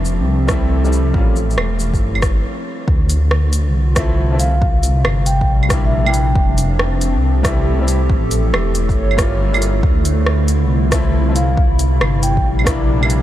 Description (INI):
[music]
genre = future garage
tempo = 138 BPM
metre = 4/4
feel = swing 66% on 16ths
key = D minor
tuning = A4 = 441 Hz
[part]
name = warbly tape-like pad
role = sustained chords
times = 0.0-13.2 s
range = C3 to E5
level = -21 LUFS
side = equal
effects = chorus, built-in reverb, sidechain pumping
[part]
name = dark detuned saw bass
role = bass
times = 0.0-13.2 s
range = E1 to D2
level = -16 LUFS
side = equal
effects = tube saturation, sidechain pumping
[part]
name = organic electronic drum kit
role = drums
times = 0.1-13.2 s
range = claves, hi-hat, rim click, shaker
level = -23 LUFS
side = right 1 dB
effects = overdrive
[part]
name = warm upright piano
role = accompaniment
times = 0.5-13.2 s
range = F3 to F4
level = -26 LUFS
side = left 2 dB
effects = sidechain pumping, diffuse ambient delay
[part]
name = electronic kick drum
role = drums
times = 0.5-12.8 s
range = none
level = -18 LUFS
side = equal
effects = overdrive
[part]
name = vibraphone with soft mallets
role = melody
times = 4.4-6.4, 11.4-12.5 s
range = E5 to G5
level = -26 LUFS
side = equal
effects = tape echo
[sound]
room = light reverb, digital ambience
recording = none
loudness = -13 LUFS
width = side -13 dB against mid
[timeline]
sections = 0.0-2.9 A section; 2.9-13.2 B section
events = break 2.4-2.9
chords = 0.0 Fmaj9; 1.1 A7; 2.9 Dm7; 4.6 C7; 6.4 Fmaj9; 8.1 A7b9b13; 9.8 Dm7; 11.6 C7